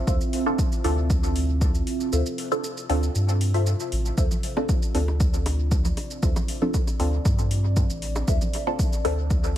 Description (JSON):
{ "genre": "dub techno", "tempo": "117 BPM", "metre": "4/4", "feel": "straight", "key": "D minor", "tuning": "A4 = 440 Hz", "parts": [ { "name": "dark analog pad", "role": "sustained chords", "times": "0.0-9.6 s", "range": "C4 to E5", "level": "-32 LUFS", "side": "right 3 dB", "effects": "chorus, phaser, sidechain pumping" }, { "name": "soft dub sub bass", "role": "bass", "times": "0.0-9.6 s", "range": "A1 to G2", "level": "-24 LUFS", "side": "equal", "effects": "sidechain pumping" }, { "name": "filtered dub chord stab", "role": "riff", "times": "0.1-8.4 s", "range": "F4 to E5", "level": "-34 LUFS", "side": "left 3 dB", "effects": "phaser, lush chorus, sidechain pumping, dub echo" }, { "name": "electronic kick drum", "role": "drums", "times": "0.1-9.4 s", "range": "none", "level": "-24 LUFS", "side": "equal", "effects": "overdrive, studio ambience" }, { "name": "electronic shaker and hi-hat", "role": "drums", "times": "0.1-9.5 s", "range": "none", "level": "-36 LUFS", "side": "right 1 dB", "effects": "overdrive, studio ambience, dub echo" }, { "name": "filtered dub chord stab", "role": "stabs", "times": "0.5-9.2 s", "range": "C4 to A4", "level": "-29 LUFS", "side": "equal", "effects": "phaser, sidechain pumping, dub echo" }, { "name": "bongos and congas", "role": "percussion", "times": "4.2-9.2 s", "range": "none", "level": "-36 LUFS", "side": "right 2 dB", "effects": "sidechain pumping on perc, studio ambience, dub echo" } ], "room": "digital ambience", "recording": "echo-heavy mix, vinyl crackle", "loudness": "-21 LUFS", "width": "side -12 dB against mid", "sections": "0.0-9.6 A section", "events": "kick drops out 2.1-4.2", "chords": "0.0 Dm7" }